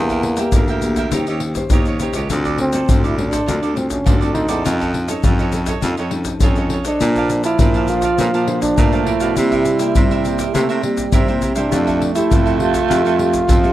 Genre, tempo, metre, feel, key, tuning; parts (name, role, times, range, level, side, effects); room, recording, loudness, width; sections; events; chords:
samba and choro; 102 BPM; 4/4; straight; F major; A4 = 443 Hz
mellow trombone; melody; 0.0-13.7 s; Bb3 to F4; -20 LUFS; equal
cavaquinho; accompaniment; 0.0-13.7 s; D4 to A5; -26 LUFS; right 7 dB
nylon-string guitar; accompaniment; 0.0-13.7 s; A2 to C5; -25 LUFS; left 2 dB
clear baritone saxophone; bass; 0.0-13.7 s; Db2 to C3; -21 LUFS; equal
egg shaker, surdo and pandeiro; percussion; 0.1-13.7 s; -19 LUFS; left 1 dB
growling tenor saxophone; second line; 7.0-13.7 s; F3 to A3; -22 LUFS; right 10 dB
little or no reverb; dry, close 1970s-style studio recording; -14 LUFS; side -14 dB against mid
0.0-13.7 A section
0.0 Em7b5; 1.1 Eb6; 2.3 Dm7; 4.7 F7b13; 7.0 Bbmaj9; 9.4 C7; 11.7 Fmaj9